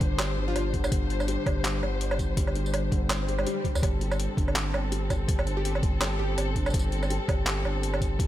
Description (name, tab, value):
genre	half-time drum and bass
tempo	165 BPM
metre	4/4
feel	swing 57% on 16ths, half-time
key	unclear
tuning	A4 = 442 Hz
part	dark studio string section	sustained chords	0.0-8.3 s	G3 to C5	-34 LUFS	left 2 dB	vintage 12-bit sampler grit, sidechain pumping
part	felt-muted upright piano	arpeggios	0.0-8.3 s	D3 to G4	-36 LUFS	left 2 dB	tape echo
part	saturated sub bass	bass	0.0-8.3 s	G1 to D2	-29 LUFS	equal	none
part	boom bap sampler-style drum kit	drums	0.0-8.3 s	handclaps, hi-hat, tambourine, woodblock	-32 LUFS	right 2 dB	small room reverb
part	electronic kick drum	drums	0.0-8.3 s	none	-27 LUFS	equal	small room reverb
part	plucky unison lead	melody	0.5-0.6, 5.6-6.5 s	F4 to G4	-37 LUFS	left 1 dB	ping-pong delay
part	swell	sound effects	3.2-3.8 s	none	-35 LUFS	left 5 dB	none
room	digital ambience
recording	none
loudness	-25 LUFS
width	side -13 dB against mid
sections	0.0-8.3 A section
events	swell 3.2-3.8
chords	0.0 G5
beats	0.19 0.56 | 0.92 1.28 1.65 2.01 | 2.37 2.74 3.10 3.46 | 3.83 4.19 4.56 4.92 | 5.28 5.65 6.01 6.37 | 6.74 7.10 7.46 7.83 | 8.19